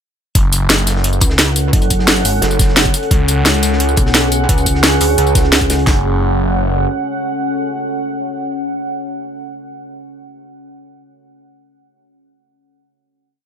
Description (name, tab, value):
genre	dark technical drum and bass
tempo	174 BPM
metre	4/4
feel	straight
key	F# minor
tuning	A4 = 440 Hz
part	deep dark ambient pad	sustained chords	1.1-9.4 s	C#4 to F#5	-19 LUFS	right 1 dB	chorus, built-in reverb, sidechain pumping
part	phased detuned saw bass	bass	0.4-6.9 s	F#1 to C#2	-16 LUFS	equal	phaser, overdrive, sidechain pumping
part	crunchy breakbeat drum kit	drums	0.4-5.9 s	hi-hat, snare drum	-25 LUFS	equal	high-pass filter on hats, high-pass filter on snare, high-pass filter on room
part	drum and bass drum kit	drums	0.4-6.0 s	kick drum, snare drum	-14 LUFS	equal	overdrive
part	drum and bass drum kit	drums	0.4-5.8 s	hi-hat, snare drum, tambourine	-14 LUFS	equal	overdrive
part	pulsing pluck wobble bass	bass	1.2-5.9 s	F#1 to D2	-16 LUFS	equal	chorus
room	light reverb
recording	none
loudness	-12 LUFS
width	side -8 dB against mid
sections	0.4-5.9 drop; 5.9-8.6 final chord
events	drop 0.4-5.9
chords	0.4 F#m; 3.1 C#sus4; 5.9 F#m